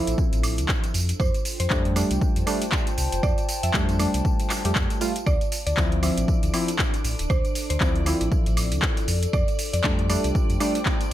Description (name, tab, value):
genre	deep house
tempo	118 BPM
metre	4/4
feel	swing 58% on 16ths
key	unclear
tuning	A4 = 441 Hz
part	warm analog keys	stabs	0.0-10.8 s	F3 to G4	-27 LUFS	equal	chorus, sidechain pumping, tape echo
part	warbly tape-like pad	texture	0.0-11.1 s	D4 to A5	-34 LUFS	left 1 dB	chorus, built-in reverb, sidechain pumping
part	sub bass with octave	bass	0.1-10.6 s	D1 to F2	-26 LUFS	equal	sidechain pumping
part	deep house drum kit	drums	0.1-11.1 s	handclaps, hi-hat, tambourine, woodblock	-28 LUFS	equal	overdrive
part	electronic kick drum	drums	0.2-11.0 s	none	-25 LUFS	equal	none
part	mallet-like synth pluck	melody	1.2-10.1 s	C5 to E5	-33 LUFS	right 1 dB	chorus, dub echo
part	soft string machine	texture	5.6-11.1 s	D5 to D6	-38 LUFS	right 1 dB	ensemble chorus
room	digital ambience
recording	none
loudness	-21 LUFS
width	side -13 dB against mid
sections	0.0-11.1 A section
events	none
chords	0.0 Dm7; 0.9 F69; 5.3 Dm7; 9.1 F69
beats	0.18 0.69 | 1.20 1.71 2.21 2.72 | 3.23 3.74 4.25 4.76 | 5.26 5.77 6.28 6.79 | 7.30 7.81 8.32 8.82 | 9.33 9.84 10.35 10.86